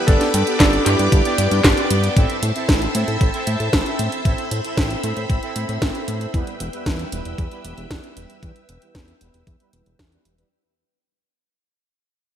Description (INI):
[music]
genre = italo disco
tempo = 115 BPM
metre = 4/4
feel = straight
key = A minor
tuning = A4 = 440 Hz
[part]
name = warm electric grand piano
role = melody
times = 0.0-1.6 s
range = D4 to A4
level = -23 LUFS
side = equal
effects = ping-pong delay
[part]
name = string machine, full ensemble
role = sustained chords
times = 0.0-10.5 s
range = B4 to E6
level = -27 LUFS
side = left 1 dB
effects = ensemble chorus
[part]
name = analog synth brass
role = stabs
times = 0.0-10.5 s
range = G3 to E5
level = -26 LUFS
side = right 3 dB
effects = chorus, vintage 12-bit sampler grit, digital delay
[part]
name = fat analog bass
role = bass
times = 0.1-10.4 s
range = E1 to A2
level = -23 LUFS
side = equal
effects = none
[part]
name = electronic kick drum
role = drums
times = 0.1-10.1 s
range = none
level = -18 LUFS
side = equal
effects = none
[part]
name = house drum kit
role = drums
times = 0.1-10.5 s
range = handclaps, hi-hat, snare drum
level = -22 LUFS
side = equal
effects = overdrive, gated reverb
[sound]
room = moderate lush hall reverb, RT60 2.0 s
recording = bright 1980s-style digital production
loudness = -17 LUFS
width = side -10 dB against mid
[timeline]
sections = 0.0-2.2 A section; 2.2-10.5 B section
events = fade-out 2.2-10.5; filter sweep on analog polysynth 2.2-10.5; filter sweep on string machine 2.2-10.5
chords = 0.1 G; 2.2 Am; 6.3 Em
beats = | 0.08 0.60 1.12 1.65 | 2.17 2.69 3.21 3.73 | 4.25 4.78 5.30 5.82 | 6.34 6.86 7.38 7.91 | 8.43 8.95 9.47 9.99